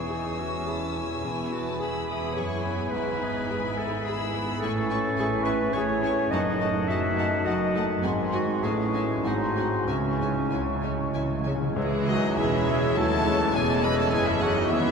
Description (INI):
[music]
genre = classical, romantic movement for piano and orchestra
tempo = 92-109 BPM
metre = 3/4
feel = rubato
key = C# minor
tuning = A4 = 440 Hz
[part]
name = clear concert grand piano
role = melody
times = 0.0-14.9 s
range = C#2 to E5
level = -29 LUFS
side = left 2 dB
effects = none
[part]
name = rich chamber violin section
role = melody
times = 0.0-14.9 s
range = D#5 to E6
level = -35 LUFS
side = left 3 dB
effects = none
[part]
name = dark cor anglais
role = second line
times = 0.0-14.9 s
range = E5 to A5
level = -37 LUFS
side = right 2 dB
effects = none
[part]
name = flute section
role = second line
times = 0.0-14.9 s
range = F#4 to C#6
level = -36 LUFS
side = equal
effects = none
[part]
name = warm chamber violin section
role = second line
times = 0.0-14.9 s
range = C#4 to B5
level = -38 LUFS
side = left 1 dB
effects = none
[part]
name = warm clarinet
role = second line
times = 0.0-14.9 s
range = C#4 to E5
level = -32 LUFS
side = left 1 dB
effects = none
[part]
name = rich chamber viola section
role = accompaniment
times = 0.0-14.9 s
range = E3 to E4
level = -34 LUFS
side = right 1 dB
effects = none
[part]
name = warm bassoon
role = accompaniment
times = 0.0-14.9 s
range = D#3 to C#4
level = -36 LUFS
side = equal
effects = none
[part]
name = dark French horn section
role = sustained chords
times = 0.0-14.9 s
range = D#3 to F#4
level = -35 LUFS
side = left 2 dB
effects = none
[part]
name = warm chamber cello section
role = bass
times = 0.0-14.9 s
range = C#2 to C#3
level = -34 LUFS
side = right 3 dB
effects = none
[part]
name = warm chamber double bass section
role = bass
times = 0.0-14.9 s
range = E1 to D#2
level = -35 LUFS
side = right 4 dB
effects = none
[part]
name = timpani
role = percussion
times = 9.9-11.8 s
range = C#3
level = -36 LUFS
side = equal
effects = none
[part]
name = mellow trumpet section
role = stabs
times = 12.1-14.9 s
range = D#4 to B4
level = -31 LUFS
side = right 1 dB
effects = none
[sound]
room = wet cathedral reverb, RT60 5.2 s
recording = none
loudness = -23 LUFS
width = side -5 dB against mid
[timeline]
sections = 0.0-11.8 A section; 11.8-14.9 A section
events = timpani fill 9.9-11.8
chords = 0.0 C#m/E; 1.2 E; 2.9 E/G#; 4.6 Amaj7; 6.3 D#dim/F#; 8.0 G#7; 8.6 Amaj7; 9.2 G#7; 9.9 C#m; 13.6 C#m/E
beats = 0.11 0.68 | 1.25 1.81 2.37 | 2.93 3.50 4.06 | 4.62 5.18 5.74 | 6.32 6.88 7.46 | 8.04 8.63 9.24 | 9.87 10.51 11.14 | 11.76 12.37 12.97 | 13.55 14.14 14.72